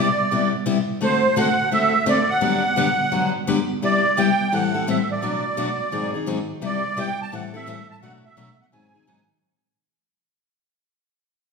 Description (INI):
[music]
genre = jazz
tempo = 171 BPM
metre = 4/4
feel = swing 62% on 8ths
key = unclear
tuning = A4 = 442 Hz
[part]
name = musette accordion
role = melody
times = 0.0-9.3 s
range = C5 to A5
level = -21 LUFS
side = right 2 dB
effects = none
[part]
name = picked steel-string acoustic guitar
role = accompaniment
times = 0.0-9.2 s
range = G2 to A4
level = -22 LUFS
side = left 4 dB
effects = none
[sound]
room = wet recital hall reverb, RT60 1.4 s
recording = recorded in a church or concert hall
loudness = -18 LUFS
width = side -5 dB against mid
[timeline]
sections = 0.0-3.8 A section; 3.8-9.4 B section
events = fade-out 3.8-9.4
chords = 0.0 Cmaj7; 1.0 D7; 2.4 Gmaj7; 3.8 Cmaj9; 4.5 Am7; 5.2 Bm7; 5.9 Ab7; 6.6 Cmaj9; 7.3 Am7; 8.0 Bm7; 8.7 Ab7